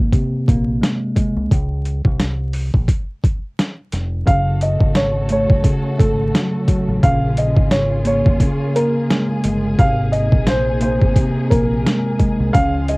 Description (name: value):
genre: hip hop, boom-bap hip-hop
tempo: 87 BPM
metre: 4/4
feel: swing 56% on 16ths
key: unclear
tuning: A4 = 440 Hz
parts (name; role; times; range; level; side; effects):
- mellow tine electric piano; accompaniment; 0.0-13.0 s; C3 to Db4; -20 LUFS; equal; medium stereo tremolo, cassette tape, high-pass filter, low-pass filter
- deep dub fingered electric bass; bass; 0.0-13.0 s; F1 to Db2; -21 LUFS; equal; none
- boom bap sampler-style drum kit; drums; 0.1-13.0 s; hi-hat, kick drum, snare drum; -16 LUFS; equal; overdrive
- dark upright piano; melody; 4.3-13.0 s; A4 to F5; -21 LUFS; equal; high-pass filter, low-pass filter, cassette tape, tape echo
- warm studio string section; sustained chords; 4.3-13.0 s; C3 to A4; -29 LUFS; equal; high-pass filter, low-pass filter, cassette tape
room: little or no reverb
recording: home recording on cassette, vinyl crackle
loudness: -15 LUFS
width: side -25 dB against mid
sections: 0.0-4.3 A section; 4.3-13.0 B section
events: break 1.5-4.3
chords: 0.0 Abadd9; 1.5 Dbmaj7; 4.3 Gbm; 7.0 Bbm7; 9.8 Abadd9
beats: 0.13 0.82 | 1.51 2.20 2.89 3.58 | 4.27 4.96 5.65 6.34 | 7.03 7.72 8.41 9.10 | 9.79 10.47 11.16 11.86 | 12.54